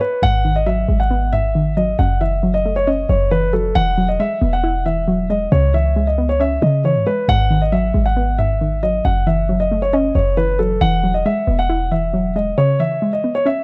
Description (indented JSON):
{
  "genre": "hip hop, trap",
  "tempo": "136 BPM",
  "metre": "4/4",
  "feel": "half-time",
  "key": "G# phrygian",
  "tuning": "A4 = 439 Hz",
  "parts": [
    { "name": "dark grand piano", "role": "melody", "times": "0.0-13.6 s", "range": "A4 to F#5", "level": "-21 LUFS", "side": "equal", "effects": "none" },
    { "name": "warbly dusty pluck", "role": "accompaniment", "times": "0.2-13.6 s", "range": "F#2 to E4", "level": "-23 LUFS", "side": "equal", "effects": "chorus" },
    { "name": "clean 808-style bass", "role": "bass", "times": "0.2-12.5 s", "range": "E1 to C#3", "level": "-21 LUFS", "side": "equal", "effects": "none" }
  ],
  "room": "small room reverb",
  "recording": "dry, gritty hardware recording",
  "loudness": "-17 LUFS",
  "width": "mono",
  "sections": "0.0-13.6 A section",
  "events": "none",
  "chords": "0.2 G#m7; 2.0 F#m7; 3.8 Eadd9; 5.5 C#m7; 7.3 G#m7; 9.0 F#m7; 10.8 Eadd9; 12.6 C#m7",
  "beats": "| 0.23 0.67 1.11 1.55 | 1.99 2.43 2.87 3.31 | 3.75 4.20 4.64 5.08 | 5.52 5.96 6.40 6.84 | 7.28 7.72 8.17 8.61 | 9.05 9.49 9.93 10.37 | 10.81 11.26 11.70 12.14 | 12.58 13.02 13.46"
}